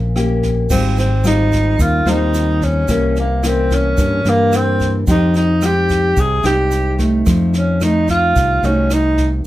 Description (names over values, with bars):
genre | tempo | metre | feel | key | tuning
bossa nova | 110 BPM | 4/4 | straight | unclear | A4 = 440 Hz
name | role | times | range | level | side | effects
breathy tenor saxophone | melody | 0.0-9.3 s | Bb3 to Ab4 | -17 LUFS | equal | none
nylon-string guitar | accompaniment | 0.0-9.4 s | G2 to G4 | -19 LUFS | left 1 dB | none
modern bright fingered electric bass | bass | 0.0-9.4 s | Ab1 to G2 | -17 LUFS | equal | none
jazz brush drum kit | drums | 0.2-9.2 s | crash cymbal, kick drum, rim click, snare drum | -22 LUFS | equal | none
egg shaker | percussion | 0.7-9.5 s | none | -34 LUFS | right 5 dB | none
room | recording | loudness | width
light reverb | none | -13 LUFS | side -15 dB against mid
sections
0.7-9.5 A section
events
none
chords
0.0 Eb7 (rootless); 0.7 Ab6; 2.9 C7b9; 5.1 Fm9; 7.3 F7b9